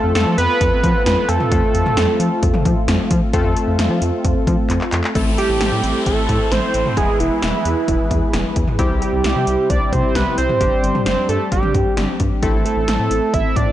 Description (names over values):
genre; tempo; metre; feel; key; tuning
synth-pop; 132 BPM; 4/4; straight; A minor; A4 = 437 Hz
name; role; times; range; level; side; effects
fat analog lead; melody; 0.0-13.7 s; E4 to E5; -20 LUFS; right 3 dB; chorus
warm analog keys; accompaniment; 0.0-13.7 s; G3 to A4; -24 LUFS; left 2 dB; chorus
warm analog pad; sustained chords; 0.0-13.7 s; C3 to B4; -25 LUFS; equal; chorus
rubbery square bass; bass; 0.0-13.7 s; E1 to F3; -21 LUFS; equal; none
80s electronic pad drums; drums; 0.2-13.7 s; cowbell, handclaps, hi-hat, kick drum, snare drum, toms; -20 LUFS; equal; gated reverb on snare and toms
downlifter; sound effects; 5.2-8.8 s; none; -30 LUFS; left 2 dB; none
room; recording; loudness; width
light reverb; nothing above 10.8 kHz; -15 LUFS; side -12 dB against mid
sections
0.0-3.3 A section; 3.3-5.2 B section; 5.2-13.7 C section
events
drum fill 4.7-5.2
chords
0.0 F; 5.2 Am; 7.0 E; 8.8 C; 10.6 Gsus4; 12.4 Am